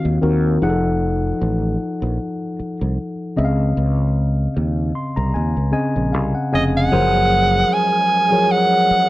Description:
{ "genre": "R&B", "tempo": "76 BPM", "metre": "4/4", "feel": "swing 54% on 16ths", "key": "unclear", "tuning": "A4 = 440 Hz", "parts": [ { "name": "warm soprano saxophone", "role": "melody", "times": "0.0-0.2, 6.5-9.1 s", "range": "Eb5 to Ab5", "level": "-16 LUFS", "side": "right 2 dB", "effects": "none" }, { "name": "mellow tine electric piano", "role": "accompaniment", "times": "0.0-9.1 s", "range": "Db3 to C6", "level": "-20 LUFS", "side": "left 1 dB", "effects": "none" }, { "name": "fretless electric bass", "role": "bass", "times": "0.0-8.9 s", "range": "F1 to Eb2", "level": "-20 LUFS", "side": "equal", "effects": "analog chorus" }, { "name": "percussive tonewheel organ", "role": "sustained chords", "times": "6.9-9.1 s", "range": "Ab3 to Bb4", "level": "-27 LUFS", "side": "right 3 dB", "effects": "slow rotary speaker, overdrive, chorus vibrato" } ], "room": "light reverb", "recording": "none", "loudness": "-16 LUFS", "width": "side -17 dB against mid", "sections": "0.0-6.9 A section; 6.9-9.1 B section", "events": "tine electric piano fill 4.6-6.9", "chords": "0.0 Ebm69; 0.6 F7b9; 3.4 Dbmaj9; 6.9 Gbmaj9#11" }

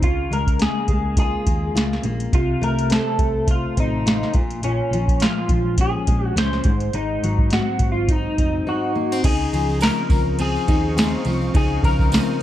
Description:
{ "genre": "indie pop, bedroom pop", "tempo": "104 BPM", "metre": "4/4", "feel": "swing 55% on 16ths", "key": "Db major", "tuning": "A4 = 440 Hz", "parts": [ { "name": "electric guitar through a small old amp", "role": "melody", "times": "0.0-12.4 s", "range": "Db4 to C5", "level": "-25 LUFS", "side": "left 1 dB", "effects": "analog chorus" }, { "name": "fingerpicked steel-string acoustic guitar", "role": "accompaniment", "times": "0.0-12.4 s", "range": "Ab2 to F4", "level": "-24 LUFS", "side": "left 2 dB", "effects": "wide subtle chorus, vibrato effect" }, { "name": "hollow-body short-scale picked electric bass", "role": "bass", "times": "0.0-12.2 s", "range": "F1 to Eb2", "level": "-25 LUFS", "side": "equal", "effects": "none" }, { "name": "soft vintage rhythm box", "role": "drums", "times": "0.0-12.3 s", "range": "crash cymbal, hi-hat, kick drum, ride cymbal, snare drum", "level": "-20 LUFS", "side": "equal", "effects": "overdrive" }, { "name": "granular cloud pad", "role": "sustained chords", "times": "10.1-12.4 s", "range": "C4 to Eb6", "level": "-33 LUFS", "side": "right 3 dB", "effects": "built-in reverb" }, { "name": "tambourine", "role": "percussion", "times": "9.2-12.3 s", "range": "none", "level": "-40 LUFS", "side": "right 6 dB", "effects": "none" } ], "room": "moderate small room reverb, RT60 0.5 s", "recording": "dark, warm production", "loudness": "-17 LUFS", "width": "side -12 dB against mid", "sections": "0.0-9.2 A section; 9.2-12.4 B section", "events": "none", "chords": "0.0 Db6; 2.3 F7/C; 4.3 Bbm7; 6.6 Ab7; 9.2 Dbmaj9" }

